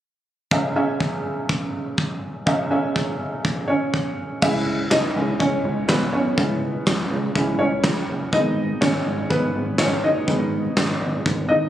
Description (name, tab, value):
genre	piano-driven pop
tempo	123 BPM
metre	4/4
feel	straight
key	C# minor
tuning	A4 = 440 Hz
part	felt-muted upright piano	accompaniment	0.5-11.7 s	C#2 to E5	-22 LUFS	equal	none
part	huge arena drum kit	drums	0.5-11.4 s	crash cymbal, handclaps, kick drum, snare drum	-24 LUFS	equal	none
part	chorused synth bass	bass	4.4-11.7 s	F#1 to C#2	-26 LUFS	right 1 dB	none
room	moderate scoring stage reverb, RT60 1.6 s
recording	recorded on a phone in the room, studio ambience, compression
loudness	-19 LUFS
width	side -12 dB against mid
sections	0.5-4.4 A section; 4.4-11.7 B section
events	felt piano solo 4.4-11.7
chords	0.5 C#m; 8.3 G#m